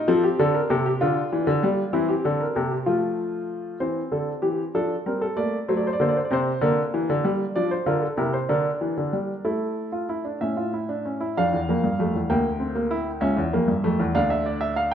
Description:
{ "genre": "classical, baroque-style 3-part fugue for grand piano", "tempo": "64 BPM (dotted quarters)", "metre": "6/8", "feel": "straight", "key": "D minor from 7.5 s", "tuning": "A4 = 440 Hz", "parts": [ { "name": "warm baby grand piano", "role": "solo", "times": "0.0-14.9 s", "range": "C#2 to G5", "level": "-21 LUFS", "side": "equal", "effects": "none" } ], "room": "wet recital hall reverb, RT60 1.4 s", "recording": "none", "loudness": "-22 LUFS", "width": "side -8 dB against mid", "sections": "0.0-3.8 A section; 3.8-11.4 B section; 11.4-14.9 A section", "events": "none", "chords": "0.1 F; 1.0 G5/D; 1.9 C7; 2.9 F; 3.8 C; 4.7 F; 5.7 D7; 6.6 Gm/D; 7.5 Bb; 8.5 Gm/D; 9.4 Asus4; 10.4 A; 11.4 Dm; 12.3 Em7b5/D; 13.2 A7/C#; 14.1 Dm", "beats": "| 0.08 1.01 | 1.93 2.86 | 3.80 4.74 | 5.68 6.61 | 7.54 8.48 | 9.43 10.40 | 11.35 12.29 | 13.21 14.14" }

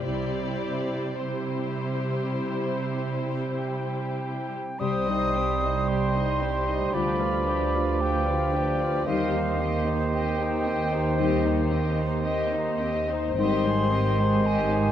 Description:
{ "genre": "classical, slow romantic movement for symphony orchestra", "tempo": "47-58 BPM", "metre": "4/4", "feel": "rubato", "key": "C major, C minor from 4.8 s", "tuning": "A4 = 440 Hz", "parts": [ { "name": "muted studio violin section", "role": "melody", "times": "0.0-14.9 s", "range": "B4 to Eb5", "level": "-38 LUFS", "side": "left 3 dB", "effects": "none" }, { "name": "muted studio violin section", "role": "second line", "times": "0.0-14.9 s", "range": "Eb4 to C5", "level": "-36 LUFS", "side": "left 2 dB", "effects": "none" }, { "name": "muted studio viola section", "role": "accompaniment", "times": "0.0-14.9 s", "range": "G3 to F4", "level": "-34 LUFS", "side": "equal", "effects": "none" }, { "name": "concert harp", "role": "arpeggios", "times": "0.0-14.9 s", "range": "Ab2 to C6", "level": "-34 LUFS", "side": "left 10 dB", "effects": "none" }, { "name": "muted studio cello section", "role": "bass", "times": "0.0-14.9 s", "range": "C2 to C3", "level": "-30 LUFS", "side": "right 2 dB", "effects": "none" }, { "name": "muted studio double bass section", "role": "bass", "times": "0.1-14.9 s", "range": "Ab1 to Eb2", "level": "-31 LUFS", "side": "right 3 dB", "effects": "none" }, { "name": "concert flute", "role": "second line", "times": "3.6-14.9 s", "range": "Eb5 to Eb6", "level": "-31 LUFS", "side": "left 1 dB", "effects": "none" }, { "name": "warm clarinet", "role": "second line", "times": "4.8-14.9 s", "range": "G4", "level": "-37 LUFS", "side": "left 1 dB", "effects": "none" }, { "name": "warm oboe", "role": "second line", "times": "4.8-14.9 s", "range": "C5 to D5", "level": "-33 LUFS", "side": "right 2 dB", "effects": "none" }, { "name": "warm bassoon", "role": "accompaniment", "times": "4.8-14.9 s", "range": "Eb3 to G3", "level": "-30 LUFS", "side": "right 3 dB", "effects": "none" }, { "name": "mellow French horn section", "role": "sustained chords", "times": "4.8-13.8 s", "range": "G3 to G4", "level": "-31 LUFS", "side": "left 4 dB", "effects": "none" } ], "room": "moderate concert hall reverb, RT60 2.4 s", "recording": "none", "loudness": "-23 LUFS", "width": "side -10 dB against mid", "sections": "0.0-4.8 A section; 4.8-14.9 B section", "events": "none", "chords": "0.1 C; 4.8 Cm; 6.9 G7/D; 9.1 Cm/Eb; 13.4 Abmaj7", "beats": "| 0.05 1.20 2.34 3.56 | 4.79 5.88 6.94 8.01 | 9.07 10.13 11.19 12.25 | 13.39 14.46" }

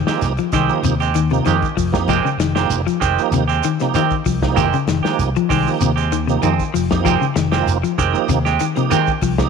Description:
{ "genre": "afrobeat", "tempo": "97 BPM", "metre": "4/4", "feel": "straight", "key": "F minor", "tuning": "A4 = 441 Hz", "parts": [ { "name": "semi-hollow electric guitar", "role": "arpeggios", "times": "0.0-9.5 s", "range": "C3 to F3", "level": "-20 LUFS", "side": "left 10 dB", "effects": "none" }, { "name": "fingered electric bass", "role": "bass", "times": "0.0-9.5 s", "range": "F1 to F2", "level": "-21 LUFS", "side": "equal", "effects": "none" }, { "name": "tonewheel organ", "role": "accompaniment", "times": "0.1-9.5 s", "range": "F3 to G4", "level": "-23 LUFS", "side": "right 13 dB", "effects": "slow rotary speaker, chorus vibrato" }, { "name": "semi-hollow electric guitar", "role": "stabs", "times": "0.1-9.1 s", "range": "Eb3 to G4", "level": "-21 LUFS", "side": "right 12 dB", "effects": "none" }, { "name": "warm soul drum kit", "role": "drums", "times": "0.1-9.5 s", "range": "hi-hat, kick drum, snare drum", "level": "-24 LUFS", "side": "left 3 dB", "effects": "none" }, { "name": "shekere", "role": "percussion", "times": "0.1-9.5 s", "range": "none", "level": "-27 LUFS", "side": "right 5 dB", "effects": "none" } ], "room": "moderate plate reverb, RT60 3.0 s", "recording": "1960s-style stereo with parts hard left and right", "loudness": "-15 LUFS", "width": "side -6 dB against mid", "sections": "0.0-9.5 A section", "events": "none", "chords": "0.0 Fm9", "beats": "0.23 0.85 1.47 | 2.09 2.71 3.33 3.95 | 4.57 5.19 5.82 6.43 | 7.05 7.67 8.29 8.91" }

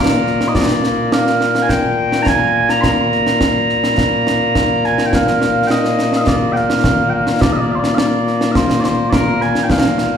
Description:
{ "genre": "scottish traditional, Scottish pipe music", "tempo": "105 BPM", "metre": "4/4", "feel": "straight", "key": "Bb mixolydian", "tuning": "A4 = 440 Hz", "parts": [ { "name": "mellow small bagpipes", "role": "melody", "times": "0.0-10.2 s", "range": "Bb2 to C6", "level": "-14 LUFS", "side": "equal", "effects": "slapback echo" }, { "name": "concert snare drum and concert bass drum", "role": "drums", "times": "0.3-10.1 s", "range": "none", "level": "-17 LUFS", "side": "equal", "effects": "none" } ], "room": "moderate club reverb, RT60 0.6 s", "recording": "live gig heard through the venue's PA, recital hall reverb", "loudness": "-12 LUFS", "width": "side -8 dB against mid", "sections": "0.0-5.1 A section; 5.1-10.2 B section", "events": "none", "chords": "none", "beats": "| 0.56 1.13 1.70 2.27 | 2.84 3.41 3.98 4.55 | 5.13 5.70 6.27 6.84 | 7.41 7.98 8.55 9.13 | 9.70" }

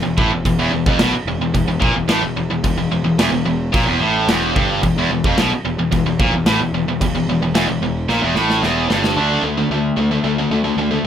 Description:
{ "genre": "heavy metal", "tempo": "110 BPM", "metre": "4/4", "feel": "straight", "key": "unclear", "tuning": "A4 = 438 Hz", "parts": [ { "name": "tight distorted guitar", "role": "riff", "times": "0.0-11.0 s", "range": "E2 to D4", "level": "-17 LUFS", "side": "equal", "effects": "distortion" }, { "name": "fuzz picked electric bass", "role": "bass", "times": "0.0-11.1 s", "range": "E1 to D2", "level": "-22 LUFS", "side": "equal", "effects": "overdrive" }, { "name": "big rock drum kit", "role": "drums", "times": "0.2-9.2 s", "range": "crash cymbal, kick drum, snare drum", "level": "-21 LUFS", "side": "equal", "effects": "none" } ], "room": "little or no reverb", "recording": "rough home demo mix", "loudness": "-15 LUFS", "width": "side -9 dB against mid", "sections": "0.0-9.2 A section; 9.2-11.1 B section", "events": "drum fill 8.1-9.2", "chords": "0.0 N.C.; 9.2 D5", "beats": "| 0.45 1.00 1.55 2.10 | 2.65 3.20 3.74 4.29 | 4.84 5.38 5.93 6.47 | 7.01 7.55 8.09 8.63 | 9.17 9.71 10.25 10.79" }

